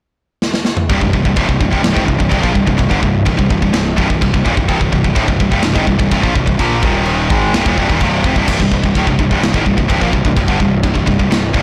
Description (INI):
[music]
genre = heavy metal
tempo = 127 BPM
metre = 4/4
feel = straight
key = C minor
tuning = A4 = 441 Hz
[part]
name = big rock drum kit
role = drums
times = 0.4-11.6 s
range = china cymbal, crash cymbal, kick drum, snare drum, toms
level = -19 LUFS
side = equal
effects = soft clipping on snare
[part]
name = heavy high-gain guitar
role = riff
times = 0.9-11.6 s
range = C2 to Bb3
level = -17 LUFS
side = equal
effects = distortion
[part]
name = fuzz picked electric bass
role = bass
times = 0.9-11.6 s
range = C1 to Bb1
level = -20 LUFS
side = equal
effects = overdrive
[sound]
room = small room ambience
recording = blown-out, overdriven recording, overdrive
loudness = -14 LUFS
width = mono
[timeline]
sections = 0.9-11.6 A section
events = drum fill 0.4-0.9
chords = 0.0 N.C.; 0.9 C5; 6.8 Eb5; 7.3 Cm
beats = 0.42 | 0.89 1.37 1.84 2.32 | 2.79 3.27 3.74 4.22 | 4.69 5.16 5.64 6.11 | 6.58 7.06 7.53 8.00 | 8.47 8.95 9.42 9.89 | 10.36 10.83 11.30